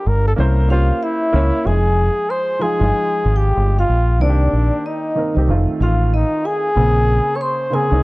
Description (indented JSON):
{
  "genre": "hip hop",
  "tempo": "94 BPM",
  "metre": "4/4",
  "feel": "swing 61% on 16ths",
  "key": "F minor",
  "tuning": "A4 = 440 Hz",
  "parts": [
    { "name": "breathy flugelhorn", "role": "melody", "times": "0.0-8.0 s", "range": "D4 to Db5", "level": "-20 LUFS", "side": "equal", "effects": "none" },
    { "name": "dark upright piano", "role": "accompaniment", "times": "0.0-8.0 s", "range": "Db3 to Db5", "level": "-23 LUFS", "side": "right 1 dB", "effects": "none" },
    { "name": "deep dub fingered electric bass", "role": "bass", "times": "0.1-8.0 s", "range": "F1 to Db2", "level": "-15 LUFS", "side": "equal", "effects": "none" },
    { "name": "vibraphone with hard mallets", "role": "second line", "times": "0.7-8.0 s", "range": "D5 to Db6", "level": "-27 LUFS", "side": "left 2 dB", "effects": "tape echo" }
  ],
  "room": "small room ambience",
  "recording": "worn, warbling old tape, cassette tape, warbly pitch drift",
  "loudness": "-14 LUFS",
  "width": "side -21 dB against mid",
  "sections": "0.0-1.7 A section; 1.7-8.0 B section",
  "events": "flugelhorn solo 0.0-1.7",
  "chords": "0.4 C7b9; 1.7 Fm9; 4.2 Cm7; 5.5 F7; 6.8 Bbm9"
}